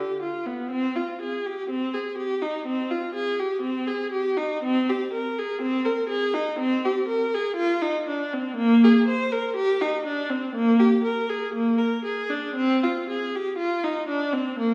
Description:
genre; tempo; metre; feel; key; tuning
classical, baroque-style suite movement for unaccompanied viola; 61 BPM; 4/4; rubato; C minor; A4 = 438 Hz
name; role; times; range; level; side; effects
warm viola; solo; 0.0-14.7 s; Bb3 to C5; -25 LUFS; equal; none
room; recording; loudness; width
wet recital hall reverb, RT60 1.6 s; heard from further back in the room; -25 LUFS; mono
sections
0.0-14.7 A section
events
none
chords
none

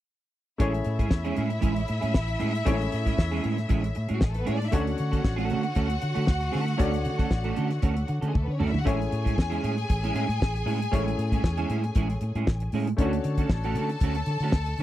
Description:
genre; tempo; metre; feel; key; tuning
disco; 116 BPM; 4/4; straight; A major; A4 = 440 Hz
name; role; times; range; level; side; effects
rich studio violin section; second line; 0.6-14.8 s; G#3 to A5; -33 LUFS; left 2 dB; none
clean electric guitar; accompaniment; 0.6-14.8 s; G#3 to A4; -30 LUFS; right 5 dB; ensemble chorus
clear baby grand piano; accompaniment; 0.6-14.8 s; A3 to D5; -34 LUFS; left 4 dB; none
vintage muted fingered electric bass; bass; 0.6-14.8 s; A1 to D3; -28 LUFS; equal; none
damped 70s drum kit; drums; 0.6-14.8 s; hi-hat, kick drum, snare drum, toms; -24 LUFS; equal; none
room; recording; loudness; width
little or no reverb; dry, close 1970s-style studio recording; -24 LUFS; side -13 dB against mid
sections
0.6-14.8 A section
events
drum fill 8.3-8.9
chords
0.6 Amaj7; 4.7 Dmaj7; 8.9 Amaj7; 13.0 Dmaj7

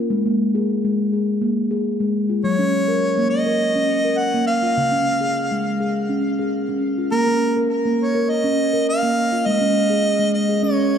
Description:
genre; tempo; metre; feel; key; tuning
world meditative, meditative tuned percussion; 103 BPM; 4/4; straight; unclear; A4 = 439 Hz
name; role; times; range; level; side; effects
steel tongue drum; arpeggios; 0.0-11.0 s; Db3 to Bb4; -19 LUFS; equal; diffuse ambient delay
warm harmonica; melody; 2.4-11.0 s; Bb4 to Gb5; -21 LUFS; equal; diffuse ambient delay
room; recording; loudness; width
wet recital hall reverb, RT60 1.4 s, small room ambience; dark, warm production; -17 LUFS; side -8 dB against mid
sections
0.0-11.0 A section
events
none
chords
0.1 Absus2; 2.4 Gb; 4.8 Db; 7.1 Bbm; 9.5 Ab5

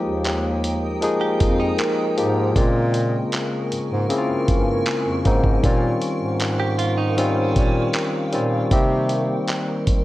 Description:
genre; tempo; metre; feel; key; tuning
contemporary R&B; 78 BPM; 4/4; straight; F minor; A4 = 440 Hz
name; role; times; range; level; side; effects
barky tine electric piano; accompaniment; 0.0-10.0 s; Db3 to Ab4; -22 LUFS; left 2 dB; none
granular cloud pad; sustained chords; 0.0-10.0 s; Bb4 to Eb6; -29 LUFS; right 2 dB; built-in reverb
warm bass clarinet; bass; 0.1-9.9 s; Eb2 to C3; -23 LUFS; equal; none
dusty soul sampler-style drum kit; drums; 0.2-10.0 s; handclaps, hi-hat, kick drum; -22 LUFS; equal; none
direct-recorded clean electric guitar; arpeggios; 1.2-8.5 s; Db4 to G4; -29 LUFS; right 5 dB; wide subtle chorus, tape echo
room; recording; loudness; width
light reverb; worn, warbling old tape, cassette tape, warbly pitch drift; -18 LUFS; side -16 dB against mid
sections
0.0-10.0 A section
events
none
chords
0.0 Fm11; 2.6 Bbm9; 5.6 Eb13; 8.7 Cm7

